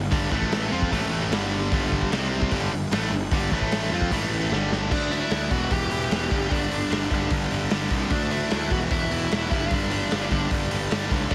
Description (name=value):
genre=punk rock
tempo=150 BPM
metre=4/4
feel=straight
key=G major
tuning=A4 = 441 Hz
part: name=cranked stack guitar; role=riff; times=0.0-11.3 s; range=E2 to F4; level=-29 LUFS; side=equal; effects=overdrive
part: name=tight distorted guitar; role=riff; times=0.0-4.9 s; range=G2 to F4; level=-34 LUFS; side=equal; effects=distortion
part: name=fuzz picked electric bass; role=bass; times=0.0-11.3 s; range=E1 to F2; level=-31 LUFS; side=equal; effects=overdrive
part: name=raw garage drum kit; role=drums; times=0.1-11.3 s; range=crash cymbal, hi-hat, kick drum, snare drum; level=-29 LUFS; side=equal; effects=none
part: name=high-gain lead guitar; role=melody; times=4.9-11.3 s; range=D4 to G5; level=-32 LUFS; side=equal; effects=distortion, delay
room=little or no reverb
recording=heavily compressed radio sound, multiband compression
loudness=-24 LUFS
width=mono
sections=0.0-4.9 A section; 4.9-11.3 B section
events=drum fill 4.5-4.9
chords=0.3 A5; 0.7 F5; 0.9 A5; 1.3 G5; 2.1 C5; 2.5 G5; 3.5 A5; 3.9 F5; 4.1 A5; 4.5 G5; 4.9 D5; 5.5 Em; 6.3 G5; 8.1 D5; 8.7 E5; 9.5 G5